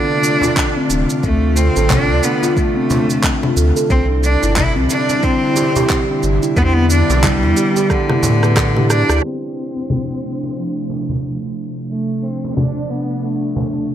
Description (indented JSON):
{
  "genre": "organic downtempo",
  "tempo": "90 BPM",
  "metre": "4/4",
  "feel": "swing 59% on 16ths",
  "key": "D dorian",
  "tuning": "A4 = 441 Hz",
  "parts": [
    { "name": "bright cello", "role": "melody", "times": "0.0-13.9 s", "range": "D3 to E4", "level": "-20 LUFS", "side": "right 1 dB", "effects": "analog delay" },
    { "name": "airy breathy pad", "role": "sustained chords", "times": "0.0-13.9 s", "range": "C3 to F4", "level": "-22 LUFS", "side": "equal", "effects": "chorus, sidechain pumping" },
    { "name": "steel tongue drum", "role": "arpeggios", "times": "0.0-9.1 s", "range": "B3 to B4", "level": "-21 LUFS", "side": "equal", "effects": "analog delay" },
    { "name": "electronic shaker, handclaps, congas and rim click", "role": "drums", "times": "0.2-12.7 s", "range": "none", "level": "-21 LUFS", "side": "left 1 dB", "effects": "none" },
    { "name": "cajon", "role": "percussion", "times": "0.2-13.7 s", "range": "none", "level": "-26 LUFS", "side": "right 2 dB", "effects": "none" },
    { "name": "electronic kick drum", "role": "drums", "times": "0.6-8.7 s", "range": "none", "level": "-20 LUFS", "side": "equal", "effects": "none" },
    { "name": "warm sub bass", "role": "bass", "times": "0.9-9.2 s", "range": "D1 to A2", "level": "-16 LUFS", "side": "equal", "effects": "sidechain pumping" }
  ],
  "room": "moderate echo chamber reverb, RT60 2.1 s",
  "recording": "echo-heavy mix, low-pass filter",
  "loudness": "-14 LUFS",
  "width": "side -10 dB against mid",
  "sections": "0.0-9.2 A section; 9.2-13.9 B section",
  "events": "drum fill 7.9-9.2; band accent 9.1-9.4; filter sweep on analog synth pad 9.2-13.9; filter sweep 9.2-13.9",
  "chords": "0.0 Dm7; 3.9 Cadd9; 6.6 Em7; 9.2 Dm7",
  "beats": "0.57 | 1.24 1.90 2.57 3.24 | 3.90 4.57 5.24 5.90 | 6.57 7.24 7.90 8.57 | 9.24 9.90 10.57 11.24 | 11.90 12.57 13.24 13.90"
}